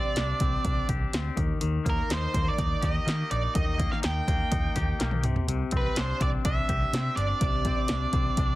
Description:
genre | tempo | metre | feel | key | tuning
quiet-loud alternative rock | 124 BPM | 4/4 | straight | unclear | A4 = 437 Hz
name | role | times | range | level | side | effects
octave-fuzz lead guitar | melody | 0.0-8.6 s | Bb4 to G5 | -31 LUFS | right 3 dB | distortion
twangy electric guitar | arpeggios | 0.0-8.6 s | C3 to G4 | -34 LUFS | left 6 dB | none
picked electric bass | bass | 0.2-8.5 s | G1 to Eb3 | -29 LUFS | equal | none
punchy analog drum machine | drums | 0.2-8.5 s | hi-hat, kick drum, snare drum, toms | -28 LUFS | equal | none
room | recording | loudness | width
little or no reverb | heavily compressed radio sound, multiband compression | -24 LUFS | side -17 dB against mid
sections
0.0-8.6 A section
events
drum fill 5.0-5.5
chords
0.0 Csus2; 1.4 Eb; 5.2 Csus2

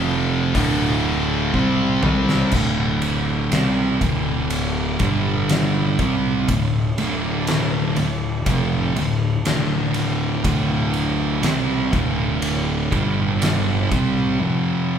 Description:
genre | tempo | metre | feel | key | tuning
stoner and doom metal | 61 BPM | 4/4 | straight | D minor | A4 = 440 Hz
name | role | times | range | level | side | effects
high-gain distorted guitar | riff | 0.0-2.5 s | D2 to C4 | -25 LUFS | left 2 dB | distortion
thick fuzz guitar | riff | 0.0-15.0 s | D2 to C4 | -26 LUFS | left 8 dB | distortion
thick fuzz guitar | riff | 0.0-15.0 s | D2 to C4 | -22 LUFS | right 4 dB | distortion
fuzz picked electric bass | bass | 0.0-14.4 s | D1 to C2 | -27 LUFS | equal | overdrive
oversized low-tuned drum kit | drums | 0.5-14.1 s | crash cymbal, hi-hat, kick drum, ride cymbal, snare drum, toms | -24 LUFS | equal | none
room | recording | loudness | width
moderate large studio reverb, RT60 1.3 s | band playing live in one room | -18 LUFS | side -8 dB against mid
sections
0.0-2.5 A section; 2.5-15.0 B section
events
drum fill 1.5-2.5; break 14.4-15.0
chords
0.0 F5; 0.6 D5; 5.0 G5; 6.0 Dm; 12.9 G5; 13.9 C5; 14.4 F5

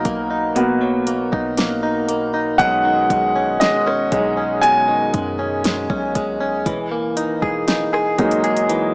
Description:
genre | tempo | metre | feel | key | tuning
contemporary R&B | 59 BPM | 4/4 | straight | B major | A4 = 440 Hz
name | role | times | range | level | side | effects
clear baby grand piano | accompaniment | 0.0-8.9 s | F#3 to G#5 | -18 LUFS | equal | none
direct-recorded clean electric guitar | arpeggios | 0.0-8.9 s | B2 to G#4 | -20 LUFS | equal | lush chorus
soft 808-style bass | bass | 0.0-8.9 s | E1 to F#2 | -33 LUFS | equal | none
smooth R&B drum kit | drums | 0.1-8.9 s | hi-hat, kick drum, rim click, snare drum | -22 LUFS | equal | overdrive, vintage 12-bit sampler grit
room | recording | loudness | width
light reverb, digital ambience | dry, gritty hardware recording, small speaker sound | -16 LUFS | side -33 dB against mid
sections
0.0-8.9 A section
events
grand piano solo 0.0-8.9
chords
0.0 Bmaj7; 2.6 B69; 6.7 Emaj9#11

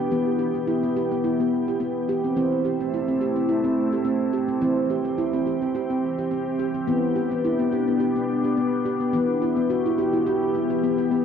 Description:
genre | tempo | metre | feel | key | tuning
world meditative, meditative tuned percussion | 106 BPM | 4/4 | swing 54% on 16ths | E minor | A4 = 441 Hz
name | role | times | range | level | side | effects
glassy FM pad | sustained chords | 0.0-11.2 s | E3 to G4 | -28 LUFS | left 1 dB | ensemble chorus, built-in reverb
handpan | arpeggios | 0.0-11.2 s | E3 to G4 | -22 LUFS | equal | tape echo
room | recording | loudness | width
wet echo chamber reverb, RT60 2.2 s | worn, warbling old tape, cassette tape, warbly pitch drift | -21 LUFS | side -7 dB against mid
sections
0.0-9.1 A section; 9.1-11.2 B section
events
none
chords
0.1 Em; 2.4 Am; 4.6 C/E; 6.9 G; 9.1 Em

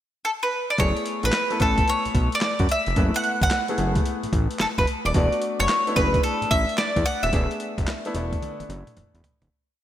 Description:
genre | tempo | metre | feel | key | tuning
R&B, new jack swing | 110 BPM | 4/4 | swing 66% on 16ths | F# minor | A4 = 440 Hz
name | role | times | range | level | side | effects
mandolin | melody | 0.2-8.3 s | A4 to F#5 | -24 LUFS | equal | none
clear grand piano | accompaniment | 0.8-9.5 s | A3 to B4 | -29 LUFS | left 2 dB | none
fat analog bass | bass | 0.8-9.5 s | D#1 to F#2 | -25 LUFS | equal | none
boom bap sampler-style drum kit | drums | 0.8-9.5 s | handclaps, hi-hat, kick drum, snare drum, toms | -25 LUFS | equal | none
room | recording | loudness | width
light reverb, digital ambience | bright 1980s-style digital production | -20 LUFS | side -12 dB against mid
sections
0.0-0.8 pickup bar; 0.8-9.5 verse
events
fade-out 7.3-9.5; drum fill 8.4-9.5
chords
0.0 N.C.; 0.8 F#m11; 5.1 E9sus4

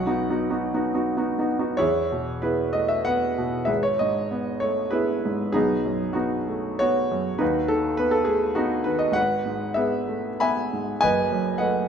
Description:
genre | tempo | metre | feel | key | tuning
classical, romantic character piece for solo piano | 88-104 BPM | 3/4 | rubato | E major | A4 = 437 Hz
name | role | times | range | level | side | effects
warm concert grand piano | solo | 0.0-11.9 s | F#1 to B5 | -22 LUFS | equal | none
room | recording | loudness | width
moderate recital hall reverb, RT60 1.5 s | none | -22 LUFS | side -7 dB against mid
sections
0.0-1.8 A section; 1.8-11.9 B section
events
none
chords
0.0 B; 1.8 E; 3.7 E/G#; 5.5 B; 7.4 B/D#; 9.2 E/G#; 11.0 B7/F#

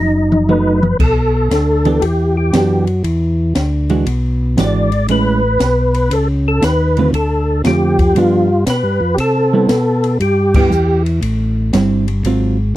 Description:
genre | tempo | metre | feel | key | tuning
soul jazz organ trio | 117 BPM | 4/4 | swing 67% on 8ths | E minor | A4 = 441 Hz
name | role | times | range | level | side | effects
percussive tonewheel organ | melody | 0.0-11.0 s | D#4 to D5 | -16 LUFS | equal | slow rotary speaker, chorus vibrato
tonewheel organ | bass | 0.0-12.7 s | F#1 to C3 | -15 LUFS | equal | slow rotary speaker
open jazz drum kit | drums | 0.3-12.4 s | crash cymbal, hi-hat, kick drum, ride cymbal, snare drum, toms | -18 LUFS | left 1 dB | none
hollow-body jazz guitar | accompaniment | 0.5-12.6 s | D3 to G4 | -16 LUFS | right 3 dB | none
room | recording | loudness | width
little or no reverb | dry, close 1970s-style studio recording | -12 LUFS | side -15 dB against mid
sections
0.0-1.0 A section; 1.0-12.8 B section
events
drum fill 0.0-1.0; band accent 10.5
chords
0.0 B7; 1.0 Em7; 3.0 E9; 5.1 Amaj7; 7.1 Dm7; 8.2 G7; 9.2 Cmaj7; 11.2 Am7; 12.2 G#13

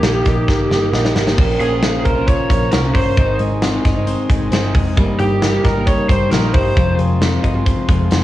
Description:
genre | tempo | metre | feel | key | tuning
jangly indie pop | 134 BPM | 4/4 | straight | unclear | A4 = 440 Hz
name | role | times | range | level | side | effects
lead guitar through a small cranked amp | melody | 0.0-7.0 s | G4 to Db5 | -21 LUFS | right 1 dB | overdrive, tape echo
glockenspiel with hard plastic mallets | second line | 0.0-7.0 s | G5 to G6 | -29 LUFS | right 3 dB | none
fingerpicked steel-string acoustic guitar | accompaniment | 0.0-8.2 s | G2 to C5 | -24 LUFS | right 4 dB | none
glass harmonica | sustained chords | 0.0-8.2 s | Ab4 to Eb6 | -29 LUFS | right 3 dB | none
twelve-string electric guitar | arpeggios | 0.0-8.2 s | G2 to C5 | -22 LUFS | left 5 dB | none
vintage muted picked electric bass | bass | 0.0-8.2 s | F1 to C2 | -20 LUFS | equal | none
big rock drum kit | drums | 0.0-8.2 s | crash cymbal, hi-hat, kick drum, snare drum | -17 LUFS | equal | none
room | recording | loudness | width
light reverb | dry, gritty hardware recording, cassette tape, small room ambience | -13 LUFS | side -14 dB against mid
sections
0.0-1.4 A section; 1.4-8.2 B section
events
drum fill 0.5-1.4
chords
0.0 Eb; 1.4 Bbmadd9; 3.2 Ab; 5.0 Eb/G; 6.8 Fm

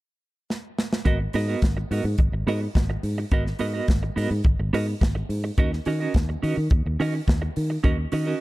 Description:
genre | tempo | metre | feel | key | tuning
disco | 106 BPM | 4/4 | straight | G# minor | A4 = 440 Hz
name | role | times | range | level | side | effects
tight funk drum kit | drums | 0.5-8.3 s | hi-hat, kick drum, snare drum | -24 LUFS | equal | none
clean electric guitar | accompaniment | 1.1-8.4 s | B3 to D#5 | -29 LUFS | right 4 dB | tremolo
fingered electric bass | bass | 1.1-8.3 s | G#1 to D#3 | -25 LUFS | equal | none
room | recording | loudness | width
little or no reverb | dark, warm production | -22 LUFS | side -18 dB against mid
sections
0.0-1.1 A section; 1.1-8.4 B section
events
drum fill 0.5-1.1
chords
0.0 N.C.; 1.1 G#m9; 5.6 D#m7

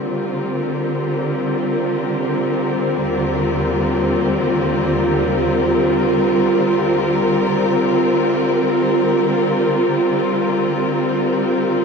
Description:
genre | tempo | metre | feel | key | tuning
ambient | free time | none | none | Bb major | A4 = 439 Hz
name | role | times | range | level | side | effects
dark chamber string section | solo | 0.0-11.8 s | Eb2 to Bb4 | -16 LUFS | equal | tape echo
room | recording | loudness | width
wet cathedral reverb, RT60 5.3 s | dark, warm production | -15 LUFS | side -5 dB against mid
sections
0.0-11.8 A section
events
none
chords
0.0 Gm7; 2.9 Eb6; 6.5 Bbadd9

